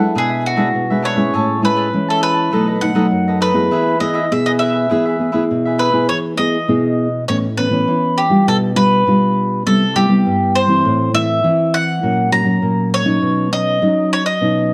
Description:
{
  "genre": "samba",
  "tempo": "101 BPM",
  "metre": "4/4",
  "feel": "straight",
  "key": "E major",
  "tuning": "A4 = 440 Hz",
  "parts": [
    { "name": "bowl-back mandolin", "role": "melody", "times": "0.0-14.7 s", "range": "F#4 to A#5", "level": "-20 LUFS", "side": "equal", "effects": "plate reverb" },
    { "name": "cavaquinho", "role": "accompaniment", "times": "0.0-6.1 s", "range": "D4 to A5", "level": "-25 LUFS", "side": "equal", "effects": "none" },
    { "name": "nylon-string guitar", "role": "accompaniment", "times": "0.0-14.7 s", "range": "F#2 to G#4", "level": "-18 LUFS", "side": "equal", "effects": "none" }
  ],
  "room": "moderate large studio reverb, RT60 0.9 s",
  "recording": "dark, warm production",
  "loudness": "-16 LUFS",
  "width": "mono",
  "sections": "0.0-6.1 A section; 6.1-14.7 A section",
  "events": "none",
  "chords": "0.2 E7/B; 1.3 Amaj7; 2.5 B7; 3.7 E; 7.3 Aadd9; 8.5 G7/B; 9.7 Cmaj7; 10.8 Am; 12.0 F#/A#; 13.2 Badd9",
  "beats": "0.16 0.75 | 1.34 1.94 2.53 3.12 | 3.72 4.31 4.91 5.50 | 6.09 6.69 7.28 7.88 | 8.47 9.06 9.66 10.25 | 10.85 11.45 12.04 12.64 | 13.23 13.83 14.43"
}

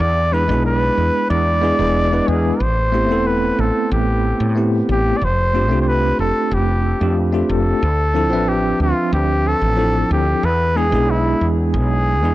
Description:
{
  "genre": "sunset chillout",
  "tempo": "92 BPM",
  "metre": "4/4",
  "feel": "straight",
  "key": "unclear",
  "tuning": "A4 = 440 Hz",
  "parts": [
    { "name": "clear flugelhorn", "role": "melody", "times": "0.0-12.3 s", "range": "E4 to D5", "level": "-20 LUFS", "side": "equal", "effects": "tape echo" },
    { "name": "woody fretless electric bass", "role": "bass", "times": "0.0-12.3 s", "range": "E1 to A2", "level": "-19 LUFS", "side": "equal", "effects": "tube saturation" },
    { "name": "bell-like tine electric piano", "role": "accompaniment", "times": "0.3-12.3 s", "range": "F3 to E5", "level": "-20 LUFS", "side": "moving between left 3 dB and right 4 dB", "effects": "fast stereo tremolo, auto-pan" }
  ],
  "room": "studio ambience",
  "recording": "dry, gritty hardware recording, transformer saturation, cassette tape, faint mains hum",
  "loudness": "-15 LUFS",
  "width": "side -16 dB against mid",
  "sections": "0.0-12.3 A section",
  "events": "none",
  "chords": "0.0 E7; 2.6 Am7; 5.2 F6; 7.8 Dm7; 10.4 E7",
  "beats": "| 0.00 0.65 1.31 1.96 | 2.61 3.26 3.92 4.57 | 5.22 5.87 6.52 7.17 | 7.83 8.48 9.13 9.78 | 10.44 11.09 11.74"
}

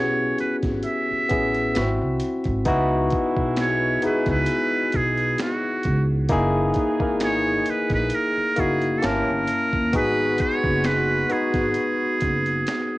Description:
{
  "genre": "R&B, neo-soul",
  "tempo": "66 BPM",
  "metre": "4/4",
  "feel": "swing 54% on 16ths",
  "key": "C# minor",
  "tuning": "A4 = 441 Hz",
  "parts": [
    { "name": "trumpet with metal mute", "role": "melody", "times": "0.0-13.0 s", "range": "F#4 to E5", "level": "-24 LUFS", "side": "right 2 dB", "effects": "cassette tape" },
    { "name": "barky tine electric piano", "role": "accompaniment", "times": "0.0-13.0 s", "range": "A#3 to A5", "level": "-23 LUFS", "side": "left 2 dB", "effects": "cassette tape" },
    { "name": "upright bass", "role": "bass", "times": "0.0-12.6 s", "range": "F#1 to D#2", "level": "-27 LUFS", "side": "right 1 dB", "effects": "none" },
    { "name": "boom bap sampler-style drum kit", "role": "drums", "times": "0.4-12.9 s", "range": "finger snaps, hi-hat, kick drum, snare drum", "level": "-28 LUFS", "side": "right 1 dB", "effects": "cassette tape" },
    { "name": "warm horn section", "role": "stabs", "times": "2.7-12.6 s", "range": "B2 to B4", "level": "-33 LUFS", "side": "right 4 dB", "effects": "cassette tape" }
  ],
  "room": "light reverb",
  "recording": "home recording on cassette",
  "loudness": "-20 LUFS",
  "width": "side -19 dB against mid",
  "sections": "0.0-13.0 A section",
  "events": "none",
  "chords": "0.0 A69; 1.8 G#7b13; 2.7 C#m11; 6.3 F#13; 9.0 Gdim7; 9.9 G#m7",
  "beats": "0.84 1.75 | 2.66 3.57 4.48 5.39 | 6.30 7.21 8.11 9.02 | 9.93 10.84 11.75 12.66"
}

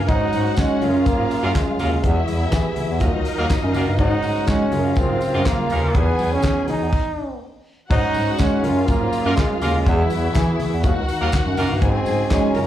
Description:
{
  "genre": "disco",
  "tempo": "122 BPM",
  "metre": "4/4",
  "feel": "straight",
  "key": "unclear",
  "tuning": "A4 = 441 Hz",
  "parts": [
    { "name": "warm studio string section", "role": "second line", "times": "0.0-12.7 s", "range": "Eb4 to Bb5", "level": "-28 LUFS", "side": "left 2 dB", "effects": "slapback echo" },
    { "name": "tine electric piano", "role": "accompaniment", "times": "0.0-12.7 s", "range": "Db3 to Eb5", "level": "-25 LUFS", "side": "left 1 dB", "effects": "medium stereo tremolo, slapback echo" },
    { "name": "percussive tonewheel organ", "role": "sustained chords", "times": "0.0-12.7 s", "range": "Db3 to F5", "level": "-31 LUFS", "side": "right 1 dB", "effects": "overdrive, chorus vibrato, slow rotary speaker" },
    { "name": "mellow bass clarinet", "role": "bass", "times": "0.0-12.7 s", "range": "Db2 to Ab3", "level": "-22 LUFS", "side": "equal", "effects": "none" },
    { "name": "bright trombone", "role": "melody", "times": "0.1-12.7 s", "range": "Ab3 to Eb4", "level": "-23 LUFS", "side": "right 1 dB", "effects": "slapback echo" },
    { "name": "damped 70s drum kit", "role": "drums", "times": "0.1-12.7 s", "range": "crash cymbal, handclaps, hi-hat, kick drum, snare drum", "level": "-21 LUFS", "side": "equal", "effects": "none" },
    { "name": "congas", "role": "percussion", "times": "0.1-12.7 s", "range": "none", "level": "-34 LUFS", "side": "left 2 dB", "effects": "none" },
    { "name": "tambourine", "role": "percussion", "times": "0.1-12.7 s", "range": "none", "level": "-43 LUFS", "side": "right 3 dB", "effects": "none" },
    { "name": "clear horn section", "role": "stabs", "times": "1.4-6.0, 9.3-11.7 s", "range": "Fb3 to Bb4", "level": "-27 LUFS", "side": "right 2 dB", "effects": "slapback echo" }
  ],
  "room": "studio ambience",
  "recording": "live gig heard through the venue's PA, club reverb",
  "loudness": "-17 LUFS",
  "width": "side -12 dB against mid",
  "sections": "0.0-7.9 A section; 7.9-12.7 A section",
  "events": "stop 6.9-7.9",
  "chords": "0.1 Ab7sus4; 0.8 Gbmaj7; 2.0 E; 3.0 Ebmadd9; 4.0 Ab7sus4; 4.7 Gbmaj7; 5.9 Emaj7; 6.9 N.C.; 7.9 Ab7sus4; 8.6 Gbmaj7; 9.9 E; 10.8 Ebmadd9; 11.8 Ab7sus4",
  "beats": "| 0.09 0.57 1.06 1.55 | 2.03 2.52 3.01 3.50 | 3.99 4.47 4.96 5.45 | 5.94 6.43 6.92 7.41 | 7.90 8.39 8.88 9.37 | 9.86 10.35 10.84 11.33 | 11.82 12.31"
}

